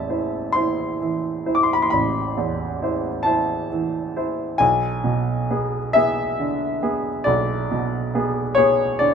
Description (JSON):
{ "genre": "classical, romantic nocturne for solo piano", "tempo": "45 BPM (dotted quarters)", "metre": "12/8", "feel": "rubato", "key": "A minor", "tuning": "A4 = 435 Hz", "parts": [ { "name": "clear baby grand piano", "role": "solo", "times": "0.0-9.1 s", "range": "A1 to D6", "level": "-19 LUFS", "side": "equal", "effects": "none" } ], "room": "light reverb", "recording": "minimal, uncompressed stereo recording", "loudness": "-19 LUFS", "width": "side -7 dB against mid", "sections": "0.0-9.1 A section", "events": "none", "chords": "0.0 Am; 4.6 G#dim/B" }